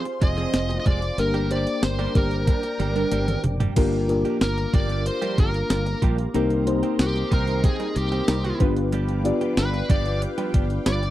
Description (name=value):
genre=1980s-style pop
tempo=93 BPM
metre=4/4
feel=straight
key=unclear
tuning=A4 = 440 Hz
part: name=warm studio violin section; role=second line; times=0.0-11.1 s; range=G5 to Eb6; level=-40 LUFS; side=equal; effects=slapback echo
part: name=mellow FM electric piano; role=accompaniment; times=0.0-11.1 s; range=Bb3 to D5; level=-26 LUFS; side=left 2 dB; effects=chorus
part: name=phased analog pad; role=sustained chords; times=0.0-11.1 s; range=Ab4 to D6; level=-37 LUFS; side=left 1 dB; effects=phaser, chorus
part: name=funky polysynth comp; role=stabs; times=0.0-11.0 s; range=F3 to B4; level=-30 LUFS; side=right 4 dB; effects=chorus
part: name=direct-recorded clean electric guitar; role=riff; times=0.1-11.1 s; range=Eb3 to Ab4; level=-32 LUFS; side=right 6 dB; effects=wide subtle chorus, slapback echo
part: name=clean 12-bit digital drum machine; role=drums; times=0.1-11.1 s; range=crash cymbal, hi-hat, kick drum, snare drum, tambourine, toms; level=-22 LUFS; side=equal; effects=none
part: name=bluesy overdriven lead guitar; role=melody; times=0.2-11.1 s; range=G4 to Eb5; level=-29 LUFS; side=equal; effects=distortion, slapback echo
part: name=fretless electric bass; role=bass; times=0.2-11.1 s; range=F1 to C2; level=-26 LUFS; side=equal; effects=none
room=little or no reverb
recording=dry, close 1970s-style studio recording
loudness=-20 LUFS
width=side -14 dB against mid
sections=0.0-3.8 A section; 3.8-11.1 B section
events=drum fill 3.1-3.8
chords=0.0 Fm; 1.2 Gm; 3.8 Gm7; 6.3 Cm7; 8.6 G7